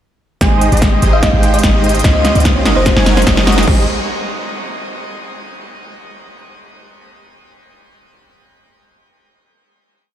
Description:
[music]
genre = future bass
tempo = 147 BPM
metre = 4/4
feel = half-time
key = Ab major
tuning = A4 = 440 Hz
[part]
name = thumb-piano-like synth pluck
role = melody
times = 0.4-3.5 s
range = C5 to Ab5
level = -21 LUFS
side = equal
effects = chorus, sidechain pumping, dub echo
[part]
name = airy dreamy lead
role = arpeggios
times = 0.4-3.8 s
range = Eb5 to Ab5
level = -26 LUFS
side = equal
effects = chorus, sidechain pumping
[part]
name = wide unison pluck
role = arpeggios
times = 0.4-3.9 s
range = F4 to Bb5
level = -30 LUFS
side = right 4 dB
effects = none
[part]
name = dense compressed supersaw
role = riff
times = 0.4-3.8 s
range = Ab3 to Ab5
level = -19 LUFS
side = right 1 dB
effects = sidechain pumping, low-pass filter
[part]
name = warm 808-style bass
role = bass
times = 0.4-3.9 s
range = Gb1 to Db2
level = -14 LUFS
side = equal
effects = sidechain pumping
[part]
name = big-room dance drum kit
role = drums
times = 0.4-3.8 s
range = crash cymbal, hi-hat, snare drum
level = -17 LUFS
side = left 1 dB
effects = overdrive
[part]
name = electronic kick drum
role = drums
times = 0.4-3.8 s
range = none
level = -15 LUFS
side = equal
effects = none
[part]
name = riser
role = sound effects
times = 1.7-3.7 s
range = none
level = -25 LUFS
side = right 1 dB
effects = none
[sound]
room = light reverb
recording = played on a big sound system in a bare room, stone room reverb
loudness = -10 LUFS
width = side -11 dB against mid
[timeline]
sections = 0.4-3.7 build; 3.7-5.3 final chord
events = build-up 0.4-3.7; drum fill 0.4-3.7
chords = 0.4 Abmaj7; 2.0 Dbmaj9#11; 2.7 Gb6; 3.7 Abmaj7

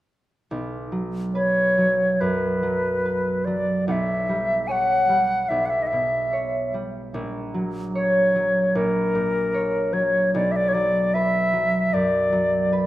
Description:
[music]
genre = classical, romantic duo for flute and harp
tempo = 70-77 BPM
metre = 4/4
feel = rubato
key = B minor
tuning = A4 = 440 Hz
[part]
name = concert harp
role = accompaniment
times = 0.5-12.9 s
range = A#1 to C#5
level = -25 LUFS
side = right 1 dB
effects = none
[part]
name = bright wooden flute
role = melody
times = 1.3-12.9 s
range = A#4 to G#5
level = -21 LUFS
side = equal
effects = none
[sound]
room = wet recital hall reverb, RT60 1.6 s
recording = none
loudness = -20 LUFS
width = side -15 dB against mid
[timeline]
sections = 0.5-12.9 A section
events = none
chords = 0.5 B5; 3.9 C#m7b5/B; 7.2 F#/A#; 10.4 Bm

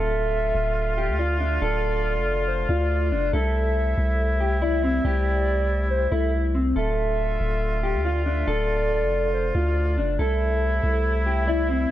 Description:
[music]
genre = hip hop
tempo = 140 BPM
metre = 4/4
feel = half-time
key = D minor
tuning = A4 = 440 Hz
[part]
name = mellow electric guitar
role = melody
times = 0.0-11.9 s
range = C4 to A4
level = -26 LUFS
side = equal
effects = lush chorus, tape echo
[part]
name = hollow clarinet-like synth lead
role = second line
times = 0.0-11.9 s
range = A4 to E5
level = -29 LUFS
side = equal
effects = chorus, phaser, tape echo
[part]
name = mellow woodwind section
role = sustained chords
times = 0.0-11.9 s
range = C3 to F4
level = -30 LUFS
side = right 1 dB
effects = none
[part]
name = long sustained 808-style bass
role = bass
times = 0.0-11.9 s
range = D1 to D2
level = -24 LUFS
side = equal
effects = none
[sound]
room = digital ambience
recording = none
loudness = -21 LUFS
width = side -13 dB against mid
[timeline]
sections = 0.0-11.9 A section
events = none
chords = 0.0 Dm; 3.3 C6; 6.8 Dm; 10.2 C6

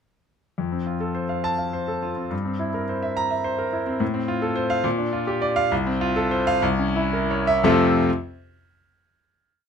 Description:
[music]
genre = classical, virtuoso piano study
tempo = 58-72 BPM (dotted quarters)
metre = 6/8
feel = rubato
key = F major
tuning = A4 = 440 Hz
[part]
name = clear grand piano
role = solo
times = 0.6-8.1 s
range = C2 to Bb5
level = -21 LUFS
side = equal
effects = none
[sound]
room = light reverb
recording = close, detailed microphones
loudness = -21 LUFS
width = side -7 dB against mid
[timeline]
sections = 0.6-7.6 A section; 7.6-9.5 final chord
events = slowing down 3.2-7.6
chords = 0.6 F; 2.3 C7/G; 4.0 F/A; 4.9 Gm7/Bb; 5.7 F/C; 6.6 C7b9; 7.6 F

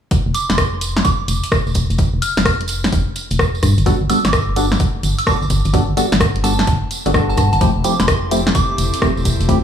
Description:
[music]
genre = UK garage, two-step garage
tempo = 128 BPM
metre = 4/4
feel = swing 65% on 16ths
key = F major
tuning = A4 = 440 Hz
[part]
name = electronic kick drum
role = drums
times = 0.1-9.6 s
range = none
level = -20 LUFS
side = equal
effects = studio reverb
[part]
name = house drum kit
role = drums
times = 0.1-9.6 s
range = hi-hat, rim click, snare drum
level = -20 LUFS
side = equal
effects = studio reverb
[part]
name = tambourine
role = percussion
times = 0.1-9.6 s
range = none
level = -28 LUFS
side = right 5 dB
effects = none
[part]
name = soft synth bell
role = melody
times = 0.3-8.7 s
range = A5 to F6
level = -24 LUFS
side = right 2 dB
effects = chorus, phaser, tape echo
[part]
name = organ-like FM bass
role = bass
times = 0.3-9.6 s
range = F1 to G2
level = -18 LUFS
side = equal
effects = none
[part]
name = percussive organ stab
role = stabs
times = 3.9-9.6 s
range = F3 to A4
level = -20 LUFS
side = left 1 dB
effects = chorus, phaser, tape echo
[part]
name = airy breathy pad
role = sustained chords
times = 7.6-9.6 s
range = C4 to A4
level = -27 LUFS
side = left 1 dB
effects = chorus, sidechain pumping
[sound]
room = little or no reverb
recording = small room ambience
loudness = -14 LUFS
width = side -8 dB against mid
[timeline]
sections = 0.1-9.6 A section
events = none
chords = 0.1 F5; 3.6 Gmaj9; 7.6 Fmaj9

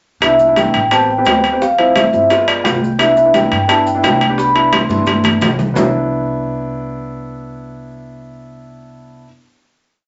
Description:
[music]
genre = Afro-Cuban jazz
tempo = 173 BPM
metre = 4/4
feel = straight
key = C major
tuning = A4 = 440 Hz
[part]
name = vibraphone with medium mallets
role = melody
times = 0.2-5.2 s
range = E5 to C6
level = -16 LUFS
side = equal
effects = none
[part]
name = warm grand piano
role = accompaniment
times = 0.2-9.3 s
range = F3 to G5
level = -21 LUFS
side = equal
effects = none
[part]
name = upright bass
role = bass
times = 0.2-9.2 s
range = G1 to G2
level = -28 LUFS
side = equal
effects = none
[part]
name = bongos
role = percussion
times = 0.2-5.8 s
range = none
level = -27 LUFS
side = equal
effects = none
[part]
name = congas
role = percussion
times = 0.2-5.8 s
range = none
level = -24 LUFS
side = equal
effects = none
[part]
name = maracas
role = percussion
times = 0.2-5.8 s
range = none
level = -40 LUFS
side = equal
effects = none
[part]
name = timbales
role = percussion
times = 0.2-5.8 s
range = none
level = -19 LUFS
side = equal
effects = none
[sound]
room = moderate studio ambience, RT60 0.5 s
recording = nothing above 7.7 kHz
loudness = -13 LUFS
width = mono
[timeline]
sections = 0.2-5.8 A section; 5.8-8.5 final chord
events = grand piano fill 2.3-3.0; drum fill 4.9-5.8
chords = 0.2 Cmaj7; 0.9 Am9; 1.6 Dm9; 2.3 G7b9; 3.0 Cmaj7

